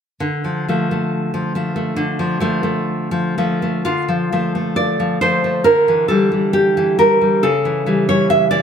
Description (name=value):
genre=romantic piece for solo classical guitar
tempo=58-71 BPM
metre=2/4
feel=rubato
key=D minor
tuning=A4 = 440 Hz
part: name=nylon-string guitar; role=solo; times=0.2-8.6 s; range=C#3 to E5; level=-15 LUFS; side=equal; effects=none
room=light reverb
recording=none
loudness=-15 LUFS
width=side -7 dB against mid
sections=0.2-3.9 A section; 3.9-8.6 B section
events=none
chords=0.2 Dm; 5.7 Gm69/D; 7.4 C#dim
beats=| 0.20 1.12 | 1.97 2.88 | 3.86 4.78 | 5.67 6.56 | 7.44 8.30